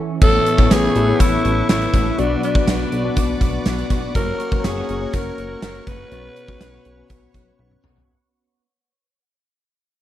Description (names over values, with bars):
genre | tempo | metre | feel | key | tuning
1980s-style pop | 122 BPM | 4/4 | straight | unclear | A4 = 439 Hz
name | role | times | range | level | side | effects
clean electric guitar | riff | 0.0-8.6 s | E3 to A4 | -28 LUFS | right 7 dB | ensemble chorus
raspy alto saxophone | melody | 0.2-7.6 s | D4 to B4 | -22 LUFS | equal | none
mellow tine electric piano | accompaniment | 0.2-8.1 s | A2 to D5 | -24 LUFS | left 7 dB | wide subtle chorus
sweeping resonant pad | sustained chords | 0.2-8.1 s | A#4 to D6 | -31 LUFS | right 1 dB | chorus
chorused synth bass | bass | 0.2-8.0 s | F#1 to B1 | -24 LUFS | equal | none
gated 80s drum kit | drums | 0.2-8.1 s | crash cymbal, hi-hat, kick drum, snare drum, tambourine, toms | -18 LUFS | equal | none
room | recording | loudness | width
little or no reverb | none | -16 LUFS | side -13 dB against mid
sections
0.2-8.1 A section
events
stop 0.0; fade-out 0.2-8.1; drum fill 7.6-8.1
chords
0.2 Aadd9; 2.2 Bm; 4.2 F#; 6.1 Bsus2